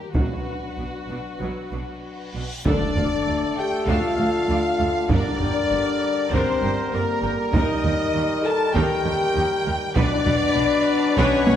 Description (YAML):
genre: cinematic, epic orchestral film score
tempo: 98 BPM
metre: 4/4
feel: straight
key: unclear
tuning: A4 = 440 Hz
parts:
  - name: warm symphonic violin section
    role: melody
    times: 0.0-11.6 s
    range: Bb4 to A5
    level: -33 LUFS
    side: left 2 dB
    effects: none
  - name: rich symphonic violin section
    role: second line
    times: 0.0-11.6 s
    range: F#4 to A5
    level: -29 LUFS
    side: left 2 dB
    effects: none
  - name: rich symphonic cello section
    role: bass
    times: 0.1-11.6 s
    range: D2 to B2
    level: -29 LUFS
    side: right 3 dB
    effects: none
  - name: rich symphonic double bass section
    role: bass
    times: 0.1-11.6 s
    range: G1 to Eb2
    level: -30 LUFS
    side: right 3 dB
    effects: none
  - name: solo taiko drums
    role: drums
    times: 0.1-11.6 s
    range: none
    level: -25 LUFS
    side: equal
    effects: none
  - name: reverse cymbal and impact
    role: sound effects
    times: 2.3-5.1 s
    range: none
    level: -34 LUFS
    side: right 1 dB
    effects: none
  - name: rich symphonic viola section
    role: accompaniment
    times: 0.2-11.6 s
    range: F#3 to G5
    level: -32 LUFS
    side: equal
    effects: none
  - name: mellow French horn section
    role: sustained chords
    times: 0.2-11.6 s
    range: F#3 to A4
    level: -25 LUFS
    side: left 4 dB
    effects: none
  - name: concert flute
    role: second line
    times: 2.7-11.6 s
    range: Bb4 to A5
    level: -30 LUFS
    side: left 2 dB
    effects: none
  - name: warm trombone section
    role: sustained chords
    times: 2.7-11.6 s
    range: B2 to A3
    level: -32 LUFS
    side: right 4 dB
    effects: none
  - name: warm trumpet section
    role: stabs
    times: 2.7-11.6 s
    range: A4 to B4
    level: -30 LUFS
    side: right 1 dB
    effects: none
room: wet scoring stage reverb, RT60 1.9 s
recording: none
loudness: -19 LUFS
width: side -10 dB against mid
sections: 0.0-2.7 A section; 2.7-11.6 B section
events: reverse cymbal 2.3-2.7; impact 2.7-5.1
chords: 0.2 Bm; 2.7 Dm; 5.1 Gm; 7.5 Eb; 10.0 Bm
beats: | 0.15 0.78 1.41 2.04 | 2.66 3.27 3.89 4.50 | 5.10 5.71 6.32 6.93 | 7.55 8.16 8.76 9.36 | 9.97 10.58 11.18